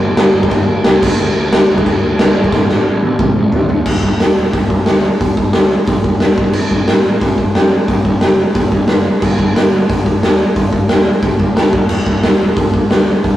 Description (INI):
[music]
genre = punk rock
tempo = 179 BPM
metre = 4/4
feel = straight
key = A mixolydian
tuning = A4 = 436 Hz
[part]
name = fuzz picked electric bass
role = bass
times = 0.0-13.3 s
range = E1 to A2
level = -21 LUFS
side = equal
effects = overdrive
[part]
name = raw garage drum kit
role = drums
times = 0.2-13.3 s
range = crash cymbal, hi-hat, kick drum, snare drum, toms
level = -11 LUFS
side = equal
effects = none
[sound]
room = little or no reverb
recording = rough rehearsal-room recording, warm saturation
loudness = -10 LUFS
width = side -13 dB against mid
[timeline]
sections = 0.0-3.9 A section; 3.9-13.4 B section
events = drum fill 2.5-3.9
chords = none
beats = 0.18 0.52 0.85 | 1.18 1.52 1.85 2.19 | 2.52 2.86 3.19 3.53 | 3.86 4.20 4.53 4.87 | 5.20 5.54 5.87 6.21 | 6.54 6.88 7.21 7.55 | 7.88 8.22 8.55 8.89 | 9.22 9.56 9.89 10.23 | 10.56 10.90 11.23 11.56 | 11.90 12.23 12.57 12.90 | 13.24